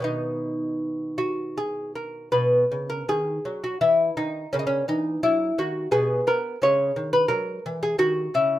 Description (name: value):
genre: classical, baroque-style dance for lute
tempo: 75-88 BPM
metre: 3/4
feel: rubato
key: B major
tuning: A4 = 440 Hz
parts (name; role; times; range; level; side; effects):
- lute; solo; 0.0-8.6 s; B2 to C#5; -22 LUFS; equal; none
room: light reverb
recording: minimal, uncompressed stereo recording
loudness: -22 LUFS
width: side -13 dB against mid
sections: 0.0-2.3 A section; 2.3-8.6 B section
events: none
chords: 0.0 B; 4.5 F#7/C#; 5.9 N.C.; 6.6 C#m